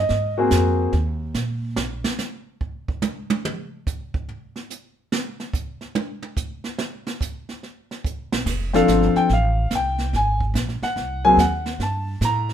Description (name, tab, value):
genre	jazz piano trio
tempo	144 BPM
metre	4/4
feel	swing 66% on 8ths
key	F major from 8.5 s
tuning	A4 = 440 Hz
part	warm grand piano	melody	0.0-0.9, 8.7-12.5 s	F3 to Bb5	-19 LUFS	left 2 dB	none
part	upright bass	bass	0.0-2.0, 8.3-12.5 s	F1 to A#2	-23 LUFS	right 1 dB	none
part	jazz brush drum kit	drums	0.1-12.5 s	brushed snare drum, crash cymbal, hi-hat, kick drum, snare drum, toms	-27 LUFS	right 3 dB	none
room	moderate studio reverb, RT60 0.7 s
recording	minimal, uncompressed stereo recording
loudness	-20 LUFS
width	side -9 dB against mid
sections	0.0-8.5 A section; 8.5-12.5 A section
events	grand piano solo 0.0-12.5; drum solo 1.8-8.5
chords	0.1 G#9; 1.8 N.C.; 8.5 F6; 10.1 Ab9; 11.8 Gmadd9